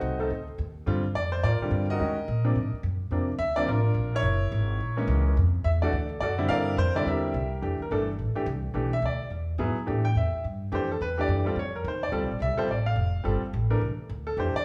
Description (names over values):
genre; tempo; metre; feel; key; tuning
jazz; 213 BPM; 4/4; swing 62% on 8ths; F major; A4 = 440 Hz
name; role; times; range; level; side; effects
clear baby grand piano; melody; 0.0-14.6 s; C3 to G5; -31 LUFS; equal; none
upright bass; bass; 0.0-14.6 s; F1 to Bb2; -30 LUFS; equal; none
room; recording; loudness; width
wet large studio reverb, RT60 1.2 s; heard from further back in the room, studio ambience; -27 LUFS; mono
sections
0.0-7.6 A section; 7.6-14.6 B section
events
grand piano solo 7.6-14.6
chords
0.0 D7b9; 0.9 Gm9; 2.0 Ebm7; 2.6 Absus2; 3.1 Bbmaj7; 4.2 Gb9; 5.4 Fmaj7; 5.9 D7; 6.5 Gm7; 7.1 C7; 7.6 F6; 8.8 Bmadd11; 9.3 E; 9.9 A5; 11.0 Em11; 11.6 Dbmaj9; 12.1 Dm7; 13.2 G7sus2; 13.8 Csus2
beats
0.01 0.30 0.58 | 0.86 1.14 1.42 1.71 | 1.99 2.27 2.55 2.83 | 3.12 3.40 3.68 3.96 | 4.24 4.52 4.80 5.09 | 5.37 5.65 5.93 6.21 | 6.50 6.78 7.06 7.34 | 7.62 7.90 8.19 8.47 | 8.75 9.03 9.31 9.60 | 9.88 10.16 10.44 10.72 | 11.00 11.28 11.56 11.85 | 12.13 12.41 12.69 12.97 | 13.25 13.53 13.81 14.09 | 14.37 14.65